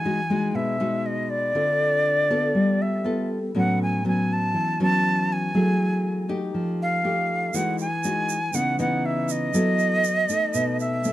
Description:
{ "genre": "bossa nova", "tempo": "120 BPM", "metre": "4/4", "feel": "straight", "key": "E major", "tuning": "A4 = 440 Hz", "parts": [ { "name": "jazz flute", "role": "melody", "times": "0.0-11.1 s", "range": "D5 to A5", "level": "-24 LUFS", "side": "right 1 dB", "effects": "none" }, { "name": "nylon-string guitar", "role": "accompaniment", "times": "0.0-11.1 s", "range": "A2 to A4", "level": "-24 LUFS", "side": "left 1 dB", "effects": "none" }, { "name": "egg shaker", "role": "percussion", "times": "7.5-11.1 s", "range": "none", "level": "-35 LUFS", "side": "right 10 dB", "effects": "none" } ], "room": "light reverb", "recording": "dark, warm production", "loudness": "-21 LUFS", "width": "side -14 dB against mid", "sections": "0.0-11.1 A section", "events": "none", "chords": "0.0 Emaj9; 1.5 Dm7; 2.5 G9; 3.5 A69; 5.5 F#m9; 6.5 F9; 7.5 Emaj9; 8.5 C#m9; 9.5 F#m7; 10.5 B7b9" }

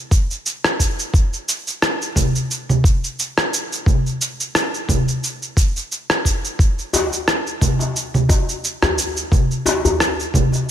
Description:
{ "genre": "downtempo", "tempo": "88 BPM", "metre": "4/4", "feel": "swing 55% on 16ths", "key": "none", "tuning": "none", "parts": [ { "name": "electronic kick drum", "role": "drums", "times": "0.1-10.5 s", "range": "none", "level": "-16 LUFS", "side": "equal", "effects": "none" }, { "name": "electronic shaker, rim click and congas", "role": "drums", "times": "0.1-10.7 s", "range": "none", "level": "-19 LUFS", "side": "right 1 dB", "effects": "none" }, { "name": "djembe", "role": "percussion", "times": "6.9-10.6 s", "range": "none", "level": "-22 LUFS", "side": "left 3 dB", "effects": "none" } ], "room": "light reverb", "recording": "none", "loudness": "-17 LUFS", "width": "side -10 dB against mid", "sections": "0.0-10.7 A section", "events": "none", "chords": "none" }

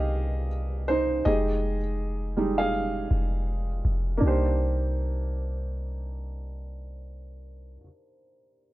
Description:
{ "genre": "contemporary R&B", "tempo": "81 BPM", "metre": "4/4", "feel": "swing 58% on 16ths", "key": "C minor", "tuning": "A4 = 440 Hz", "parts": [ { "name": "felt-muted upright piano", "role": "accompaniment", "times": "0.0-8.7 s", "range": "Eb3 to F5", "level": "-28 LUFS", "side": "right 1 dB", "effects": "low-pass filter" }, { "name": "clean 808-style bass", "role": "bass", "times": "0.0-7.8 s", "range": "F1 to C2", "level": "-28 LUFS", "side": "equal", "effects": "none" } ], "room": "studio ambience", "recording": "dry, gritty hardware recording", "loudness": "-25 LUFS", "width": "side -17 dB against mid", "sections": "0.0-4.2 A section; 4.2-7.2 B section", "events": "felt piano solo 0.0-4.2; filter sweep on felt piano 0.0-4.2", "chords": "0.0 Cm7; 1.3 Fm7; 4.2 Cm7" }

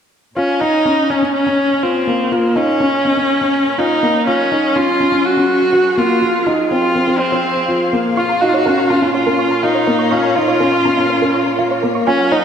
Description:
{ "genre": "electronica", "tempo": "123 BPM", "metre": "4/4", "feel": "straight", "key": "Bb minor", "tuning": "A4 = 441 Hz", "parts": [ { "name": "clear viola", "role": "melody", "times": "0.4-12.4 s", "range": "Bb3 to Gb4", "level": "-15 LUFS", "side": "right 1 dB", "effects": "shimmer reverb, diffuse ambient delay" }, { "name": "rich string quartet", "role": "sustained chords", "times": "0.4-12.4 s", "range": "Bb2 to F5", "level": "-26 LUFS", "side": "left 2 dB", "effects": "shimmer reverb" }, { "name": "felt-muted upright piano", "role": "riff", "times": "0.4-12.4 s", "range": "Bb3 to Gb4", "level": "-17 LUFS", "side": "left 1 dB", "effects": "shimmer reverb, diffuse ambient delay" }, { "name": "soft round pluck", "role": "arpeggios", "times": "8.2-12.4 s", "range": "Bb4 to Db6", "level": "-21 LUFS", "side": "right 3 dB", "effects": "chorus, shimmer reverb, diffuse ambient delay" } ], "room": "wet lush hall reverb, RT60 2.7 s", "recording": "dreamy mix soaked in reverb", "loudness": "-13 LUFS", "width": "side -8 dB against mid", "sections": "0.4-12.4 A section", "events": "fade-in on string quartet 0.4-12.4", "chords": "0.4 Bbm; 4.3 Gbadd9; 6.2 Fm; 8.2 Bbm" }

